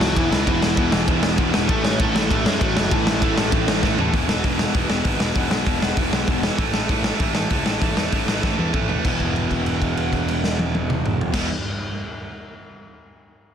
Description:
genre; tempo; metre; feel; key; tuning
punk rock; 195 BPM; 4/4; straight; unclear; A4 = 440 Hz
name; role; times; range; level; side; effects
bluesy overdriven lead guitar; melody; 0.0-3.4 s; E3 to C#5; -25 LUFS; equal; distortion
cranked stack guitar; riff; 0.0-11.5 s; E2 to A3; -25 LUFS; right 15 dB; overdrive
overdriven electric guitar; riff; 0.0-4.1 s; E2 to A3; -27 LUFS; equal; none
raw garage guitar; riff; 0.0-11.5 s; E2 to A3; -27 LUFS; left 19 dB; overdrive
fuzz picked electric bass; bass; 0.0-11.5 s; E1 to F#2; -26 LUFS; equal; overdrive
raw garage drum kit; drums; 0.0-11.4 s; crash cymbal, hi-hat, kick drum, ride cymbal, snare drum, toms; -22 LUFS; equal; none
room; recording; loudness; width
little or no reverb; dense, heavily limited modern master; -18 LUFS; side -8 dB against mid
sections
0.0-4.1 A section; 4.1-9.0 B section; 9.0-11.5 C section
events
drum fill 3.8-4.1, 8.4-9.0; held note 9.0-11.3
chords
0.0 E5; 1.7 A5; 4.1 E5; 6.6 A5; 9.0 E5

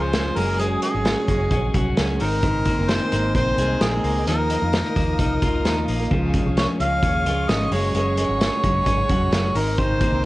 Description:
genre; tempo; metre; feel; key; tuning
jangly indie pop; 131 BPM; 4/4; straight; unclear; A4 = 441 Hz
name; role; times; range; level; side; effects
mellow harmonica; melody; 0.0-10.2 s; Ab4 to F5; -24 LUFS; equal; cassette tape
picked steel-string acoustic guitar; accompaniment; 0.0-10.3 s; Gb2 to Bb4; -28 LUFS; right 3 dB; none
warm studio string section; sustained chords; 0.0-10.3 s; Db4 to Eb6; -35 LUFS; left 1 dB; none
clean electric guitar; arpeggios; 0.0-10.3 s; Eb3 to Ab4; -27 LUFS; left 3 dB; none
vintage muted fingered electric bass; bass; 0.0-10.3 s; F1 to F2; -25 LUFS; equal; none
vintage drum kit; drums; 0.1-10.1 s; hi-hat, kick drum, snare drum; -24 LUFS; equal; cassette tape
room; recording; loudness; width
light reverb; home recording on cassette; -18 LUFS; side -18 dB against mid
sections
0.0-10.3 A section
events
none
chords
0.4 Gbsus2; 2.2 Abadd9; 4.3 Ebsus2; 6.1 Db; 7.7 Gbsus2; 9.6 Abadd9

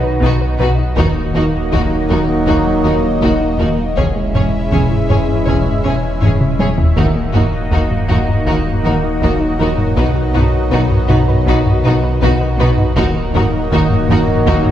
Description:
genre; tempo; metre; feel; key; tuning
cinematic, hybrid orchestral and electronic film score; 80 BPM; 4/4; straight; Eb phrygian; A4 = 440 Hz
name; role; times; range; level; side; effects
clear trombone section; sustained chords; 0.0-14.7 s; Eb3 to Ab3; -23 LUFS; right 2 dB; none
phased analog pad; sustained chords; 0.0-14.7 s; Ab3 to Fb5; -23 LUFS; equal; phaser, chorus
warm French horn section; sustained chords; 0.0-14.7 s; Ab3 to Bb4; -23 LUFS; left 2 dB; none
soft round pluck; arpeggios; 0.0-14.7 s; Db3 to B4; -26 LUFS; left 3 dB; none
sub bass with octave; bass; 0.0-14.7 s; Eb1 to B1; -21 LUFS; equal; none
warm symphonic violin section; melody; 0.2-14.6 s; Bb4 to Db5; -26 LUFS; left 3 dB; none
warm symphonic viola section; accompaniment; 0.2-14.6 s; Db4 to D#4; -25 LUFS; right 1 dB; none
rich symphonic double bass section; bass; 0.2-14.5 s; Fb1 to Eb2; -20 LUFS; right 1 dB; none
warm symphonic cello section; bass; 0.2-14.6 s; Eb2 to B2; -22 LUFS; right 2 dB; none
taiko ensemble; drums; 0.2-14.7 s; none; -18 LUFS; equal; none
warm symphonic violin section; second line; 0.3-14.6 s; F#4 to Ab4; -24 LUFS; left 2 dB; none
room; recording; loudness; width
wet scoring stage reverb, RT60 2.0 s; heard from further back in the room; -12 LUFS; side -11 dB against mid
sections
0.0-14.7 A section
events
drum fill 6.2-7.0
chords
0.0 B; 1.0 Ebm; 4.0 Dbm/Fb; 7.0 Ebm; 10.0 B; 13.0 Ebm

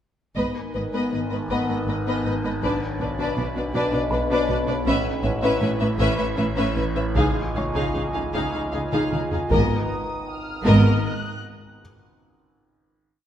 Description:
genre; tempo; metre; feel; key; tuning
cinematic, suspense film score; 79 BPM; 3/4; straight; G# dorian; A4 = 440 Hz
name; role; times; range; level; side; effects
rich symphonic violin section; melody; 0.4-11.1 s; D5 to E#5; -32 LUFS; left 3 dB; none
warm symphonic violin section; second line; 0.4-11.1 s; G#4 to B4; -28 LUFS; left 2 dB; none
warm symphonic viola section; accompaniment; 0.4-11.1 s; B3 to D#4; -28 LUFS; left 1 dB; none
glass harmonica; sustained chords; 0.4-9.9 s; D4 to B5; -31 LUFS; right 1 dB; none
rich symphonic cello section; bass; 0.4-11.1 s; G#2 to C#3; -27 LUFS; right 1 dB; none
rich symphonic double bass section; bass; 0.4-11.1 s; G#1 to C#2; -28 LUFS; right 2 dB; none
overtone-sweeping drone; drone; 1.0-9.9 s; G#1 to C#2; -30 LUFS; equal; chorus, built-in reverb
taiko ensemble; drums; 0.4-12.1 s; none; -28 LUFS; equal; none
warm symphonic violin section; texture; 0.4-4.5, 9.5-11.4 s; G#5 to F#6; -38 LUFS; left 2 dB; none
felt-muted upright piano; texture; 1.5-9.5 s; B4 to C#6; -36 LUFS; left 2 dB; none
room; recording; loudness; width
wet scoring stage reverb, RT60 1.6 s; none; -21 LUFS; side -10 dB against mid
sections
0.4-9.5 A section; 9.5-11.8 final chord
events
drum fill 8.9-9.5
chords
0.4 G#madd9; 2.6 Bmadd9; 4.9 Aadd9; 7.2 C#add9; 9.5 G#madd9

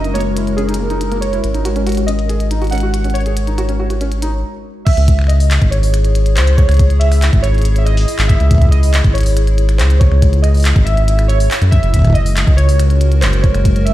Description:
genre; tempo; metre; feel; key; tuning
IDM; 140 BPM; 4/4; straight; unclear; A4 = 440 Hz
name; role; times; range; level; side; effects
warbly lo-fi synth keys; melody; 0.0-13.9 s; G#4 to F#5; -22 LUFS; right 2 dB; chorus, digital delay
warbly tape-like pad; sustained chords; 0.0-13.9 s; G#3 to A#4; -23 LUFS; left 3 dB; chorus, built-in reverb, phaser
felt-muted upright piano; arpeggios; 0.0-4.3 s; A#3 to G#4; -24 LUFS; right 2 dB; digital delay
round analog bass; bass; 0.0-13.9 s; F#1 to F#2; -13 LUFS; equal; none
glitchy drum kit; drums; 0.0-13.9 s; crash cymbal, finger snaps, handclaps, hi-hat; -24 LUFS; equal; overdrive, digital delay
electronic kick drum; drums; 4.9-13.7 s; none; -11 LUFS; equal; overdrive
room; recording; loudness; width
digital ambience; played on a big sound system in a bare room, stone room reverb; -11 LUFS; side -15 dB against mid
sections
0.0-4.9 A section; 4.9-13.9 B section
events
break 4.4-4.9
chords
0.0 F#13; 1.4 G#7sus4; 4.9 C#madd9; 11.7 F#13

